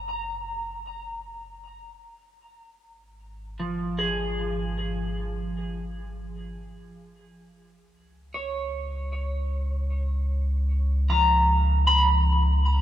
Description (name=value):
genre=ambient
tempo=free time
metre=none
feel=none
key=Db mixolydian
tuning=A4 = 437 Hz
part: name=clean electric guitar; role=arpeggios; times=0.0-12.8 s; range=F3 to Cb6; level=-26 LUFS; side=equal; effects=phaser, tape echo
part: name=deep rumbling drone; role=bass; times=0.0-12.8 s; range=Gb1 to Db2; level=-26 LUFS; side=equal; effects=built-in reverb
room=wet cathedral reverb, RT60 5.0 s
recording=in a vast, echoing space, cassette tape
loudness=-23 LUFS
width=side -12 dB against mid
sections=0.0-12.8 A section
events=fade-in on synth drone 0.0-12.8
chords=0.0 Gb; 2.4 Fm/Ab; 7.2 Db5